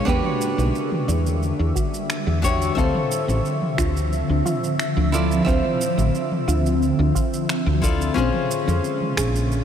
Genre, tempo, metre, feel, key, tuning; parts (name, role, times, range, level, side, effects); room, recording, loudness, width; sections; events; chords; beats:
sunset chillout; 89 BPM; 4/4; straight; D dorian; A4 = 439 Hz
nylon-string guitar; accompaniment; 0.0-9.6 s; Db4 to E5; -25 LUFS; moving between left 6 dB and right 3 dB; auto-pan, analog delay
shimmering ambient pad; sustained chords; 0.0-9.6 s; Db3 to E5; -24 LUFS; left 1 dB; chorus, built-in reverb, phaser
soft round pluck; arpeggios; 0.1-9.5 s; B3 to D5; -31 LUFS; right 1 dB; chorus, analog delay
woody fretless electric bass; bass; 0.1-9.6 s; A1 to F2; -22 LUFS; equal; tube saturation, ensemble chorus
deep house drum kit; drums; 0.1-9.6 s; finger snaps, shaker, toms; -30 LUFS; right 1 dB; overdrive
electronic kick drum; drums; 0.1-9.3 s; -25 LUFS; equal
moderate huge ambient reverb, RT60 8.2 s; dreamy mix soaked in reverb; -19 LUFS; side -8 dB against mid
0.0-9.6 A section
filter sweep on synth pluck 0.0-9.6
0.1 Em9; 2.8 Dm9; 8.2 Bbm9
| 0.07 0.75 1.42 2.09 | 2.77 3.44 4.12 4.79 | 5.46 6.14 6.81 7.49 | 8.16 8.84 9.51